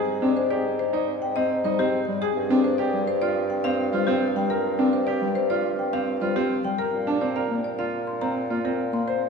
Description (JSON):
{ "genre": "classical, minimalist pattern music", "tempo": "105 BPM", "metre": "4/4", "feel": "straight", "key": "unclear", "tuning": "A4 = 439 Hz", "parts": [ { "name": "marimba with medium hard mallets", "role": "melody", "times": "0.0-9.3 s", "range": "G4 to C6", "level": "-27 LUFS", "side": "left 4 dB", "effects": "none" }, { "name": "bright baby grand piano", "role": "arpeggios", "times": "0.0-9.3 s", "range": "C4 to C5", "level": "-28 LUFS", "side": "right 4 dB", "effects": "none" }, { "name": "mellow bassoon", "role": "bass", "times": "0.0-9.3 s", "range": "G2 to Bb2", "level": "-28 LUFS", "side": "right 1 dB", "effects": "none" }, { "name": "mellow bass clarinet", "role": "accompaniment", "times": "0.2-9.0 s", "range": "G3 to D4", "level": "-28 LUFS", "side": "left 2 dB", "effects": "none" } ], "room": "wet cathedral reverb, RT60 5.1 s", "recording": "recorded in a church or concert hall", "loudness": "-22 LUFS", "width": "side -5 dB against mid", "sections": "0.0-9.3 A section", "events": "none", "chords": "0.0 Abmaj7; 2.4 G7(no3); 6.9 Bb" }